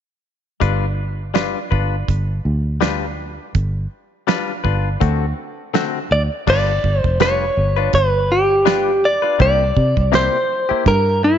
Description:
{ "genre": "straight-eighth soul blues", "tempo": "82 BPM", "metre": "4/4", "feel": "swing 56% on 16ths", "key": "G mixolydian", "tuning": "A4 = 441 Hz", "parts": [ { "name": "direct-recorded clean electric guitar", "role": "stabs", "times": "0.6-10.9 s", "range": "C3 to B4", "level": "-23 LUFS", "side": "left 10 dB", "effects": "none" }, { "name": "fingered electric bass", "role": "bass", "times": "0.6-11.4 s", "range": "F1 to C3", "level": "-19 LUFS", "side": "equal", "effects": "none" }, { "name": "damped 70s drum kit", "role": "drums", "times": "0.6-11.1 s", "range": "crash cymbal, hi-hat, kick drum, snare drum", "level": "-21 LUFS", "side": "right 5 dB", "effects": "none" }, { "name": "direct-recorded clean electric guitar", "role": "melody", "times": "6.1-11.4 s", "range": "E4 to D5", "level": "-16 LUFS", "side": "equal", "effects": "none" } ], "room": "light reverb, studio reverb", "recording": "1960s-style stereo, nothing above 7.6 kHz", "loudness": "-15 LUFS", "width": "side -9 dB against mid", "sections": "0.6-6.5 A section; 6.5-11.4 B section", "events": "none", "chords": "0.6 G7; 5.0 D7; 6.5 G7; 9.4 C7", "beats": "| 0.61 1.35 2.08 2.81 | 3.55 4.28 5.01 5.75 | 6.48 7.21 7.94 8.67 | 9.40 10.13 10.87" }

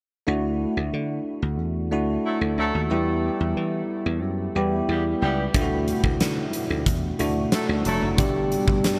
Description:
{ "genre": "1980s-style pop", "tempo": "91 BPM", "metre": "4/4", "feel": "straight", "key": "D major", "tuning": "A4 = 439 Hz", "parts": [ { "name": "bell-like tine electric piano", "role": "accompaniment", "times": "0.3-9.0 s", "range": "G3 to G4", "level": "-27 LUFS", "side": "equal", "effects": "lush chorus" }, { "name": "dry thumbed slap bass", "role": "bass", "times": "0.3-9.0 s", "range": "F1 to E3", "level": "-29 LUFS", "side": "equal", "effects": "none" }, { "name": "mellow horn section", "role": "stabs", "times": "2.2-8.1 s", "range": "E3 to A4", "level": "-34 LUFS", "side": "equal", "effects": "delay" }, { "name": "huge arena drum kit", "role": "drums", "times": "5.5-9.0 s", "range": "hi-hat, kick drum, snare drum", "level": "-27 LUFS", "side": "equal", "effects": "none" } ], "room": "wet huge ambient reverb, RT60 7.8 s", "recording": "dreamy mix soaked in reverb", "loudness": "-24 LUFS", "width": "mono", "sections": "0.3-9.0 A section", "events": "none", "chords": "0.3 Dadd9; 2.9 Em; 5.5 Dadd9; 8.2 G", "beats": "| 0.27 0.93 1.59 2.25 | 2.91 3.57 4.23 4.89 | 5.55 6.21 6.87 7.53 | 8.19 8.85" }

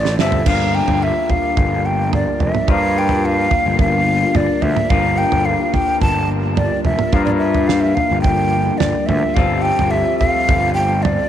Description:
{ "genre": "psychedelic rock", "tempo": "108 BPM", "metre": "4/4", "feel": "straight", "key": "G dorian", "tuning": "A4 = 440 Hz", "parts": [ { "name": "breathy mellow silver concert flute", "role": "melody", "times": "0.0-11.3 s", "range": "D5 to A5", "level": "-19 LUFS", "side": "right 1 dB", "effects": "tape echo" }, { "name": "string machine, cellos", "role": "sustained chords", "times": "0.0-11.3 s", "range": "G3 to D6", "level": "-27 LUFS", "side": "right 8 dB", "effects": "ensemble chorus" }, { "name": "fuzz picked electric bass", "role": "bass", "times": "0.0-11.2 s", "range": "F1 to G2", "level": "-20 LUFS", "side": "equal", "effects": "overdrive" }, { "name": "damped 70s drum kit", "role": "drums", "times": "0.1-11.2 s", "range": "crash cymbal, kick drum, snare drum, toms", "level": "-20 LUFS", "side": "right 2 dB", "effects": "none" }, { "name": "electric guitar through a small old amp", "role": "riff", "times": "0.2-11.3 s", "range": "G2 to Bb4", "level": "-22 LUFS", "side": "left 10 dB", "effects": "phaser" } ], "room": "light reverb, studio reverb", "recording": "1960s-style stereo with parts hard left and right", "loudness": "-14 LUFS", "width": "side -10 dB against mid", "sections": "0.5-11.3 A section", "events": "drum fill 0.0-0.5", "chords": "0.5 Gm7; 9.4 Fadd9/G", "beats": "| 0.47 1.02 1.58 2.13 | 2.69 3.24 3.80 4.36 | 4.91 5.47 6.03 6.58 | 7.14 7.70 8.26 8.81 | 9.38 9.94 10.50 11.06" }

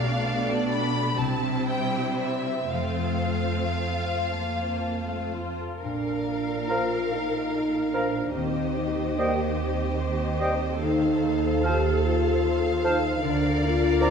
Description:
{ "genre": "classical", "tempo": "37-51 BPM (dotted quarters)", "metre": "6/8", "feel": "rubato", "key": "F major, Bb major from 5.8 s", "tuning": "A4 = 438 Hz", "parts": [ { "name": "rich studio violin section", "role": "melody", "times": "0.0-14.1 s", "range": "D5 to B5", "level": "-33 LUFS", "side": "left 2 dB", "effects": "none" }, { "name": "rich symphonic violin section", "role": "second line", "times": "0.0-14.1 s", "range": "D4 to D5", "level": "-34 LUFS", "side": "left 1 dB", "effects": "none" }, { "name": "warm symphonic viola section", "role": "accompaniment", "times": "0.0-14.1 s", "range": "G3 to Bb4", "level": "-32 LUFS", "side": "right 1 dB", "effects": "none" }, { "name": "concert harp", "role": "arpeggios", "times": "0.0-14.1 s", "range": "Bb2 to A5", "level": "-33 LUFS", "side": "left 4 dB", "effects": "none" }, { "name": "clear symphonic double bass section", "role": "bass", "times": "0.0-14.1 s", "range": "F1 to Eb2", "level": "-31 LUFS", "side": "right 4 dB", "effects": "none" }, { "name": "warm symphonic cello section", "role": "bass", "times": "0.0-14.1 s", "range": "F2 to Eb3", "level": "-33 LUFS", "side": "right 4 dB", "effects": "none" }, { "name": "dark French horn section", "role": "sustained chords", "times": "5.8-14.1 s", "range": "Bb3 to G4", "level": "-27 LUFS", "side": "left 2 dB", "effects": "none" }, { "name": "silver concert flute", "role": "second line", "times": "6.7-14.1 s", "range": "G5 to Bb5", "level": "-35 LUFS", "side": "left 1 dB", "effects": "none" }, { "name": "warm clarinet", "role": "second line", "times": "6.7-14.1 s", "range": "Bb4 to C5", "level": "-35 LUFS", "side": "right 2 dB", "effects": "none" }, { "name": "warm oboe", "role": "second line", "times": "6.7-14.1 s", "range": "D5 to F5", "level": "-34 LUFS", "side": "right 2 dB", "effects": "none" }, { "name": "warm bassoon", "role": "accompaniment", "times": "6.7-14.1 s", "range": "F3 to G3", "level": "-33 LUFS", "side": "right 2 dB", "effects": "none" } ], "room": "wet scoring stage reverb, RT60 1.9 s", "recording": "minimal, uncompressed stereo recording", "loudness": "-23 LUFS", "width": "side -6 dB against mid", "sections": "0.0-5.8 A section; 5.8-14.1 B section", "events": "none", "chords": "0.0 G7/B; 1.2 C9; 2.7 F; 5.8 Bb; 8.4 Cm/Eb; 10.8 F7/Eb; 13.2 Bb/D", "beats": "1.18 | 2.72 4.31 | 5.83 7.11 | 8.36 9.60 | 10.82 12.04 | 13.23" }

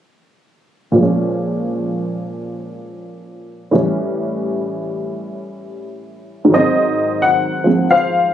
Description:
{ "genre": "solo jazz", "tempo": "87 BPM", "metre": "4/4", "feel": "swing 67% on 8ths", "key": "unclear", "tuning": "A4 = 440 Hz", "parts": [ { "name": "honky-tonk upright piano", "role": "solo", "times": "0.9-8.3 s", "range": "Ab2 to Gb5", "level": "-16 LUFS", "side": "equal", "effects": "none" } ], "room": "moderate club reverb, RT60 0.6 s", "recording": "recorded on a phone in the room, studio ambience, compression", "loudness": "-15 LUFS", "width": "side -10 dB against mid", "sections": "1.0-6.5 A section; 6.5-8.3 B section", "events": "none", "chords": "1.0 Bbm7; 3.7 A7; 6.5 Ab7", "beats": "| 0.98 1.67 2.36 3.05 | 3.75 4.44 5.13 5.82 | 6.51 7.20 7.89" }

